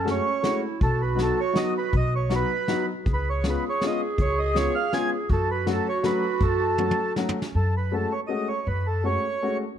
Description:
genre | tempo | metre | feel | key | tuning
musette waltz | 161 BPM | 3/4 | straight | F# dorian | A4 = 440 Hz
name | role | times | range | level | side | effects
mellow accordion | melody | 0.0-9.6 s | A4 to G#5 | -27 LUFS | right 2 dB | none
growling clarinet | second line | 0.0-7.5 s | C#4 to G#4 | -29 LUFS | right 5 dB | none
clear upright piano | accompaniment | 0.0-9.6 s | F#3 to F#4 | -29 LUFS | left 5 dB | none
upright bass | bass | 0.0-9.2 s | B1 to F#2 | -26 LUFS | equal | none
vintage brush drum kit | drums | 0.1-7.5 s | hi-hat, kick drum, snare drum, toms | -28 LUFS | equal | none
room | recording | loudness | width
light reverb | close, detailed microphones | -22 LUFS | side -9 dB against mid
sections
0.0-7.5 A section; 7.5-9.8 A section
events
drum fill 6.8-7.5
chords
0.0 F#madd9; 0.8 B; 3.0 C#7; 5.3 F#m; 7.5 F#madd9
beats
0.07 0.44 | 0.81 1.18 1.55 | 1.92 2.29 2.67 | 3.05 3.43 3.80 | 4.17 4.55 4.92 | 5.28 5.65 6.02 | 6.39 6.77 7.15 | 7.54 7.92 8.30 | 8.67 9.05 9.42

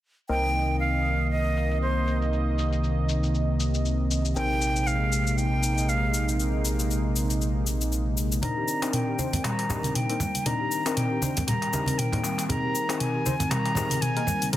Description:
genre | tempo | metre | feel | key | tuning
afro house | 118 BPM | 4/4 | swing 56% on 16ths | C minor | A4 = 442 Hz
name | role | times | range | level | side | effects
silver concert flute | melody | 0.3-14.6 s | C5 to Bb5 | -30 LUFS | right 1 dB | low-pass filter, tape echo
warm analog pad | sustained chords | 0.3-14.6 s | C3 to Eb5 | -29 LUFS | equal | chorus
warm analog keys | stabs | 0.3-14.6 s | Bb3 to C5 | -34 LUFS | left 4 dB | chorus, low-pass filter
smooth synth bass | bass | 0.3-8.4 s | Bb1 to C2 | -27 LUFS | equal | none
house drum kit | drums | 0.3-14.6 s | hi-hat, shaker, toms | -31 LUFS | left 1 dB | low-pass filter on perc, studio ambience, low-pass filter on hats, low-pass filter on toms
folk marimba with soft mallets | arpeggios | 8.4-14.6 s | G3 to G4 | -33 LUFS | left 2 dB | low-pass filter, tape echo
congas | percussion | 8.4-14.6 s | none | -31 LUFS | right 2 dB | none
darbuka | percussion | 8.8-13.9 s | none | -34 LUFS | left 2 dB | none
room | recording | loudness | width
light reverb, small room ambience | dense, heavily limited modern master | -23 LUFS | side -14 dB against mid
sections
0.3-8.4 A section; 8.4-14.6 B section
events
build-up 8.4-14.6; drum fill 8.4-14.6; filter sweep on synth keys 8.4-14.6; filter sweep on flute 8.4-14.6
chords
0.3 Cm7; 4.4 Bb9sus4; 8.4 Cm9; 12.5 Bb9sus4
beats
| 0.29 0.80 1.31 1.82 | 2.33 2.84 3.34 3.85 | 4.36 4.87 5.38 5.89 | 6.39 6.90 7.41 7.92 | 8.43 8.94 9.45 9.95 | 10.46 10.97 11.48 11.99 | 12.50 13.01 13.51 14.02 | 14.53

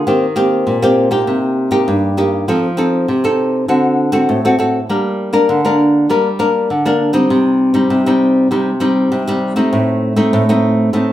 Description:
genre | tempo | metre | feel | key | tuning
samba | 99 BPM | 4/4 | straight | G minor from 4.9 s | A4 = 439 Hz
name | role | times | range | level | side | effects
nylon-string guitar | solo | 0.0-11.1 s | G2 to Bb4 | -12 LUFS | equal | none
room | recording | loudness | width
wet large studio reverb, RT60 0.9 s | band playing live in one room | -12 LUFS | side -13 dB against mid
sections
0.0-4.9 A section; 4.9-11.1 B section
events
none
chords
0.1 Eb6; 1.3 Cm7; 2.5 F7; 3.7 D7; 4.9 Gm; 7.3 Cm; 9.7 Adim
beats
| 0.07 0.67 1.27 1.88 | 2.48 3.08 3.69 4.29 | 4.89 5.50 6.10 6.70 | 7.31 7.91 8.52 9.12 | 9.72 10.32 10.93

